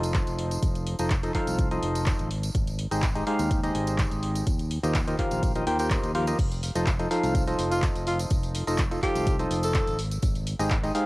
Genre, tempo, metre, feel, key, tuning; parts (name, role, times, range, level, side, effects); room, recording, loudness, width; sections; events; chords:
piano house; 125 BPM; 4/4; straight; A4 = 440 Hz
percussive organ stab; riff; 0.0-11.1 s; Eb3 to G5; -28 LUFS; equal; chorus, sidechain pumping
fingered electric bass; bass; 0.0-10.9 s; F1 to Eb2; -30 LUFS; equal; sidechain pumping
punchy analog drum machine; drums; 0.0-11.1 s; crash cymbal, handclaps, hi-hat, tambourine; -35 LUFS; equal; cassette tape
tambourine; percussion; 0.0-10.9 s; -41 LUFS; right 2 dB
electronic kick drum; drums; 0.1-10.8 s; -27 LUFS; equal; cassette tape
breathy alto saxophone; melody; 7.7-10.0 s; F4 to A4; -30 LUFS; equal; cassette tape, analog delay
light reverb; home recording on cassette; -24 LUFS; side -21 dB against mid
0.0-11.1 A section
0.0 F7; 2.3 Abmaj7; 4.5 Eb69; 6.4 F7; 10.0 Abmaj7